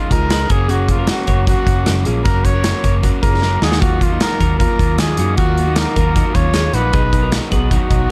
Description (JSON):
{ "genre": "jangly indie pop", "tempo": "154 BPM", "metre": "4/4", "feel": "straight", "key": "F# major", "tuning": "A4 = 440 Hz", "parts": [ { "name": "warm trumpet", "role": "melody", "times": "0.0-8.1 s", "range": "E#4 to C#5", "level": "-23 LUFS", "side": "equal", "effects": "slapback echo" }, { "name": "raw garage guitar", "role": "accompaniment", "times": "0.0-8.1 s", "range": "F#2 to E#4", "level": "-27 LUFS", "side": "equal", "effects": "overdrive" }, { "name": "twelve-string electric guitar", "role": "arpeggios", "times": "0.0-8.1 s", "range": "A#3 to C#5", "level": "-27 LUFS", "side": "equal", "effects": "slapback echo" }, { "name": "vintage muted picked electric bass", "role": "bass", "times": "0.1-8.1 s", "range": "F#1 to F#2", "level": "-20 LUFS", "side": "equal", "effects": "none" }, { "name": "big rock drum kit", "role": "drums", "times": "0.1-8.0 s", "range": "hi-hat, kick drum, snare drum", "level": "-19 LUFS", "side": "equal", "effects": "none" } ], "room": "little or no reverb", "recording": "dark, warm production", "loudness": "-15 LUFS", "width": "mono", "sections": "0.0-8.1 A section", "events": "drum fill 3.4-3.8", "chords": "0.0 C#add9; 0.5 F#; 3.6 D#madd9; 6.9 B" }